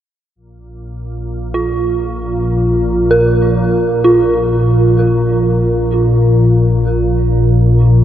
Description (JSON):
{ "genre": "dark ambient drone", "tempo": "free time", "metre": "none", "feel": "none", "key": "unclear", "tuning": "A4 = 440 Hz", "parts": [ { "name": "organ-like drone", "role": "drone", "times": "0.9-8.0 s", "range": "Bb1 to Bb2", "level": "-12 LUFS", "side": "equal", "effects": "ensemble chorus, built-in reverb" }, { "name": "dark detuned synth bell", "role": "arpeggios", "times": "1.5-8.0 s", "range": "F4 to Bb4", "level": "-16 LUFS", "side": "right 1 dB", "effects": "chorus, phaser, diffuse ambient delay" } ], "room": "wet huge ambient reverb, RT60 7.9 s", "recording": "none", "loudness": "-11 LUFS", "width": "side -11 dB against mid", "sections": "0.4-8.0 A section", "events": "none", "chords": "0.4 Bb5" }